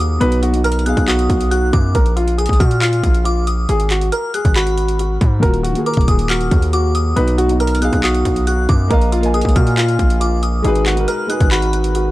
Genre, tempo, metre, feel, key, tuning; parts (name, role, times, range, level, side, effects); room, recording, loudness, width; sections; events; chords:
hip hop, trap; 138 BPM; 4/4; half-time; A4 = 440 Hz
glassy synth bell; second line; 0.0-12.1 s; Cb6 to F#6; -25 LUFS; left 2 dB; chorus, ping-pong delay
dark grand piano; accompaniment; 0.0-2.0, 5.4-12.1 s; B2 to Ab5; -21 LUFS; equal
distorted 808-style bass; bass; 0.0-12.1 s; Eb1 to Bb2; -17 LUFS; equal; distortion
dark baby grand piano; melody; 0.2-12.1 s; F4 to B4; -20 LUFS; equal; ping-pong delay
trap drum kit; drums; 0.2-12.1 s; handclaps, hi-hat, kick drum; -18 LUFS; equal
digital ambience; dark, warm production; -13 LUFS; side -17 dB against mid
0.0-12.1 A section
0.2 B; 1.9 Bb5; 3.7 Abm7; 5.4 Ebmadd9; 7.2 B; 8.9 Bbsus4; 10.6 Abm7